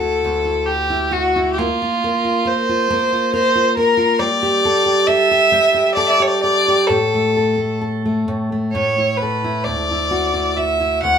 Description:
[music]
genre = celtic folk, Celtic slow air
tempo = 67 BPM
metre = 3/4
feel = uneven beats, rubato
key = unclear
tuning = A4 = 438 Hz
[part]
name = rich fiddle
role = melody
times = 0.0-11.2 s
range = F4 to F#5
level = -16 LUFS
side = equal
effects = none
[part]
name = fingerpicked steel-string acoustic guitar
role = accompaniment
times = 0.0-11.2 s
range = D2 to Bb4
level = -20 LUFS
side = right 1 dB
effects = none
[sound]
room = moderate studio reverb, RT60 0.5 s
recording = band playing live in one room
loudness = -15 LUFS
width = side -7 dB against mid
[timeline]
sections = 0.0-11.2 A section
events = none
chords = 0.0 Dadd9; 1.6 Bb5; 4.2 Gsus2; 6.9 N.C.; 8.7 A; 9.6 Dadd9

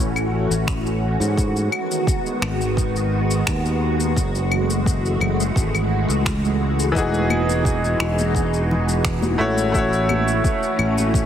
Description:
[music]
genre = sunset chillout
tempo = 86 BPM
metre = 4/4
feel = straight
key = unclear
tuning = A4 = 440 Hz
[part]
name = soft string machine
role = sustained chords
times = 0.0-11.3 s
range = D#3 to F#4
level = -23 LUFS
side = equal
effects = phaser, ensemble chorus
[part]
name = modern bright fingered electric bass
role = bass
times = 0.0-11.3 s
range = E1 to G#2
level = -22 LUFS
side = equal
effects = tube saturation
[part]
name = electronic claves, shaker and finger snaps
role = drums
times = 0.2-11.3 s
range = none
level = -27 LUFS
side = left 3 dB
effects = overdrive
[part]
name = electronic kick drum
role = drums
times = 0.7-11.3 s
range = none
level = -23 LUFS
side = equal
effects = overdrive
[part]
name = bright concert grand piano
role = accompaniment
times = 6.9-11.3 s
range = E3 to C#5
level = -21 LUFS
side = left 1 dB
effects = auto-pan, ping-pong delay
[part]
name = congas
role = percussion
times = 7.3-11.1 s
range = none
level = -30 LUFS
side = left 4 dB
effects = none
[sound]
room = light reverb, digital ambience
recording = heavily compressed radio sound, multiband compression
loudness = -18 LUFS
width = side -9 dB against mid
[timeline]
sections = 0.0-11.3 A section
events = none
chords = 0.0 A6; 1.4 G#m7; 4.2 F#m9; 7.0 Emaj9; 9.4 A6

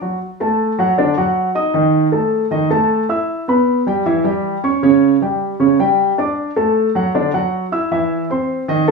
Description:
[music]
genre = jazz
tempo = 155 BPM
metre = 4/4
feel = straight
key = unclear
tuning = A4 = 440 Hz
[part]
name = warm concert grand piano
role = solo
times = 0.0-8.9 s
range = C#3 to E6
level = -14 LUFS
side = right 1 dB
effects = none
[sound]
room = moderate studio reverb, RT60 0.7 s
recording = small room ambience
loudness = -14 LUFS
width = side -3 dB against mid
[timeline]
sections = 0.2-8.9 A section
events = none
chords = 0.2 D; 1.7 A5; 3.3 Em; 4.8 G5; 6.4 Dadd9; 7.9 C/E

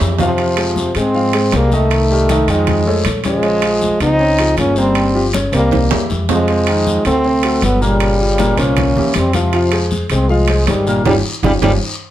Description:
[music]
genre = Afro-Cuban jazz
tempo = 157 BPM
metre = 4/4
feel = straight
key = F minor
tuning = A4 = 443 Hz
[part]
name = clear upright piano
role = accompaniment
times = 0.0-11.8 s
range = Bb2 to F5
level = -20 LUFS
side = equal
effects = none
[part]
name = upright bass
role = bass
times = 0.0-11.8 s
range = G1 to Ab2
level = -18 LUFS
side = equal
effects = none
[part]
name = guiro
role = percussion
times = 0.0-11.7 s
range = none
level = -28 LUFS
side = left 4 dB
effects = none
[part]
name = timbales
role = percussion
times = 0.0-11.7 s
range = none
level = -23 LUFS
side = right 6 dB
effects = none
[part]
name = clear French horn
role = melody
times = 0.2-11.7 s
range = F3 to Eb4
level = -16 LUFS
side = equal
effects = none
[part]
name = mellow trombone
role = second line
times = 0.2-11.7 s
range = C3 to C4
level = -23 LUFS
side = right 3 dB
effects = none
[part]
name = congas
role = percussion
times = 0.2-11.7 s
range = none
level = -23 LUFS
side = left 1 dB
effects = none
[sound]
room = light reverb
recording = none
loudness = -12 LUFS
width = side -12 dB against mid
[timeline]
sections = 0.4-12.1 A section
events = drum fill 0.0-0.4, 5.7-6.5, 11.6-12.1; band accent 11.1-12.1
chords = 0.4 Fm7; 1.9 Cm7; 2.7 F7alt; 3.4 Bbm9; 5.0 Gm7b5; 5.7 C7; 6.5 Fm7; 7.2 D7; 8.0 Gm7b5; 8.8 C7b9; 9.5 Fm9; 11.1 Fsus2/G

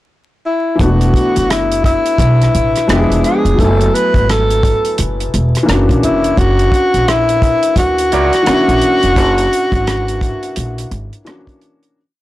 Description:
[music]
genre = R&B, neo-soul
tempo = 86 BPM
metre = 4/4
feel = swing 61% on 16ths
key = unclear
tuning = A4 = 441 Hz
[part]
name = breathy tenor saxophone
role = melody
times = 0.5-11.2 s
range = E4 to B4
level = -14 LUFS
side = equal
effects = none
[part]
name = warm upright piano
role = accompaniment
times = 0.8-12.0 s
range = E3 to G#5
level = -18 LUFS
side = left 2 dB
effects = none
[part]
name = upright bass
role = bass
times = 0.8-11.1 s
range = E1 to D2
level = -16 LUFS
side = equal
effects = tube saturation
[part]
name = damped 70s drum kit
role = drums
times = 0.8-12.0 s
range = hi-hat, kick drum, rim click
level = -17 LUFS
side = equal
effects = soft clipping on snare
[part]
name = electric guitar through a small old amp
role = second line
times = 7.8-8.3 s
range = E4 to D5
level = -21 LUFS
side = right 4 dB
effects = spring reverb
[sound]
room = moderate small room reverb, RT60 0.5 s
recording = blown-out, overdriven recording, vinyl crackle, overdrive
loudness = -11 LUFS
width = side -16 dB against mid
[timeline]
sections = 0.0-0.8 pickup bar; 0.8-12.0 verse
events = fade-out 9.2-12.0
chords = 0.0 N.C.; 0.8 E9sus4; 2.9 Fdim7; 3.6 F#m11; 5.7 F#7b13

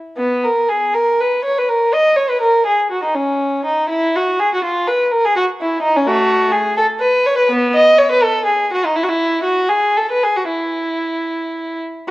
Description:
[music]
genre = classical, baroque-style suite movement for unaccompanied violin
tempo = 71-85 BPM (dotted quarters)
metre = 6/8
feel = rubato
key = B major, E major from 6.1 s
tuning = A4 = 440 Hz
[part]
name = dark violin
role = solo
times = 0.2-12.1 s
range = A3 to D#5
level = -14 LUFS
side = equal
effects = none
[sound]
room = moderate recital hall reverb, RT60 1.5 s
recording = worn, warbling old tape, cassette tape, warbly pitch drift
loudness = -14 LUFS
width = side -18 dB against mid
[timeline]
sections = 0.2-12.1 A section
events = none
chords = none

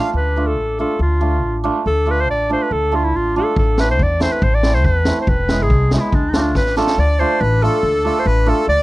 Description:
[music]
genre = klezmer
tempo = 140 BPM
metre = 2/4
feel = straight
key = D dorian sharp4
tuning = A4 = 439 Hz
[part]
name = bright clarinet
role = melody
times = 0.0-8.8 s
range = D4 to F5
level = -19 LUFS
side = equal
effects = none
[part]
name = accordion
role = second line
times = 0.0-0.1, 6.6-8.8 s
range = A4 to F5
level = -25 LUFS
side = left 1 dB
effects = none
[part]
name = hammered dulcimer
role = accompaniment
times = 0.0-8.6 s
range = G#3 to F4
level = -21 LUFS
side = right 3 dB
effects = none
[part]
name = upright bass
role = bass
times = 0.1-8.8 s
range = E1 to E2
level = -18 LUFS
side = equal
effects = none
[part]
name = street-band drum kit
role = drums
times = 3.6-7.0 s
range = kick drum, snare drum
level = -19 LUFS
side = equal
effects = none
[sound]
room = little or no reverb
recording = dry, close 1970s-style studio recording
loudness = -14 LUFS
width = side -18 dB against mid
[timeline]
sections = 0.1-7.0 A section; 7.0-8.8 B section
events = drum fill 6.6-7.0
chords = 0.1 Dm; 3.6 Am; 5.3 E; 6.1 Dm

